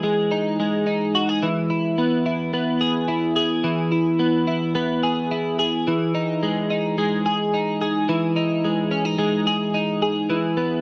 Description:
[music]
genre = indie pop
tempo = 108 BPM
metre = 4/4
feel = straight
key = E major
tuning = A4 = 441 Hz
[part]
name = twelve-string electric guitar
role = solo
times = 0.0-10.8 s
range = E3 to G#4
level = -22 LUFS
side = equal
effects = analog chorus, slapback echo
[sound]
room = light reverb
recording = rough home demo mix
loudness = -22 LUFS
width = mono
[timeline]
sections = 0.0-1.4 A section; 1.4-10.3 B section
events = none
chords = 0.0 C#madd9/E (rootless); 1.4 E; 5.9 C#madd9/E (rootless); 10.3 E

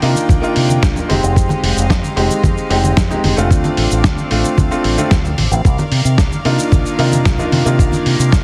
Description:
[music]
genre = nu-disco, nu disco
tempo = 112 BPM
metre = 4/4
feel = straight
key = C minor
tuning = A4 = 440 Hz
[part]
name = clear concert grand piano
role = accompaniment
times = 0.0-8.4 s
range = Ab3 to G4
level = -20 LUFS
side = equal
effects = sidechain pumping, tape echo
[part]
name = rich chamber string section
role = sustained chords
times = 0.0-8.4 s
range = Eb3 to G5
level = -28 LUFS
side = equal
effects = sidechain pumping
[part]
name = fingered electric bass with an envelope filter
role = bass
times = 0.0-8.4 s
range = F1 to C3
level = -19 LUFS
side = equal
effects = none
[part]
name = dusty soul sampler-style drum kit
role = drums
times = 0.0-8.4 s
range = cabasa, hi-hat, snare drum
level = -23 LUFS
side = equal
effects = small room ambience
[part]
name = congas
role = percussion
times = 0.1-8.0 s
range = none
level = -25 LUFS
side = equal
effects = none
[part]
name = electronic kick drum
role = drums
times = 0.3-8.4 s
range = none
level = -17 LUFS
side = equal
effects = small room ambience
[sound]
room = small room ambience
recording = heavily compressed radio sound, multiband compression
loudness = -14 LUFS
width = mono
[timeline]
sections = 0.0-8.4 A section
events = none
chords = 0.0 Cm11; 1.1 Fm9; 3.5 Dm7; 5.6 Cm11

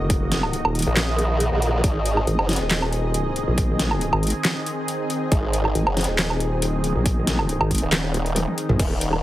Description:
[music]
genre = heavy wobble dubstep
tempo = 138 BPM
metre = 4/4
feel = swing 53% on 16ths, half-time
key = unclear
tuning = A4 = 440 Hz
[part]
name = lush unison pad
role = sustained chords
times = 0.0-9.2 s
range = Eb3 to Eb5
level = -27 LUFS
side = equal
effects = chorus, phaser, sidechain pumping
[part]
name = vowel-sweep wobble bass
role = bass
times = 0.0-8.8 s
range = Eb1 to Bb1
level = -23 LUFS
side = equal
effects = chorus, overdrive
[part]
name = dubstep drum kit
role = drums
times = 0.1-9.2 s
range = crash cymbal, handclaps, hi-hat, snare drum, toms, woodblock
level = -24 LUFS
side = equal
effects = overdrive
[part]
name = electronic kick drum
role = drums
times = 0.1-8.9 s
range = none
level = -23 LUFS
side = equal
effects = overdrive
[part]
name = formant-sweep wobble bass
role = bass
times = 0.9-2.6, 5.3-9.2 s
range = Eb1 to Bb1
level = -22 LUFS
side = equal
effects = chorus, overdrive
[sound]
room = little or no reverb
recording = heavily compressed radio sound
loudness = -19 LUFS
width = side -15 dB against mid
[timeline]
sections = 0.0-9.2 A section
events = drum fill 8.4-8.8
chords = 0.0 Ebm; 1.8 Ab

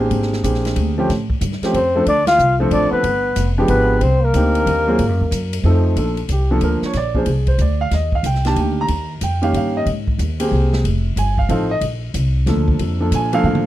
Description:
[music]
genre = jazz, small-group swing and bop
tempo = 184 BPM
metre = 3/4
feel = swing 64% on 8ths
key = Bb major from 6.0 s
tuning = A4 = 440 Hz
[part]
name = warm grand piano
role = accompaniment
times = 0.0-13.7 s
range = Eb3 to Bb5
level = -19 LUFS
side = right 1 dB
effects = none
[part]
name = upright bass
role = bass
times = 0.0-13.7 s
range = F1 to Bb2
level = -18 LUFS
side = equal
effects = none
[part]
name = swinging big-band drum kit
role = drums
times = 0.1-13.7 s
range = hi-hat, kick drum, ride cymbal, snare drum, toms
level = -27 LUFS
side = equal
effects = none
[part]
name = clear trombone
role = second line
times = 1.7-5.6 s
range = Bb3 to F4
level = -24 LUFS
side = right 4 dB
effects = none
[part]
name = mellow flugelhorn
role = melody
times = 1.8-5.7 s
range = Bb4 to F5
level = -18 LUFS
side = left 2 dB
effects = none
[sound]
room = small room ambience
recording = dry, close 1970s-style studio recording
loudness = -15 LUFS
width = side -14 dB against mid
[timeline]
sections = 0.0-6.0 A section; 6.0-13.7 B section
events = band accent 2.2; drum fill 13.5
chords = 0.1 Abmaj9#11; 1.1 Am7b13; 2.1 Dm7; 3.0 G7b9; 4.0 Cm9; 5.0 Absus2; 5.6 F7; 6.0 Bbmaj7; 6.9 Bb7; 7.9 Ebmaj7; 8.9 Eb7; 9.9 Abmaj9; 10.8 F7; 11.8 Bbmaj7

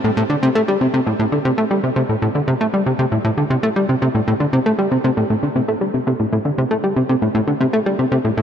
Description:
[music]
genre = ambient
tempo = 117 BPM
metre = 4/4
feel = straight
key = A minor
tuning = A4 = 443 Hz
[part]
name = plucky analog bass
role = solo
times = 0.0-8.4 s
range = A2 to A3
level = -16 LUFS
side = equal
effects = analog delay
[sound]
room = moderate huge ambient reverb, RT60 8.4 s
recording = none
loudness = -16 LUFS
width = side -8 dB against mid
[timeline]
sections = 0.0-5.3 A section; 5.3-8.4 B section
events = none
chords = none

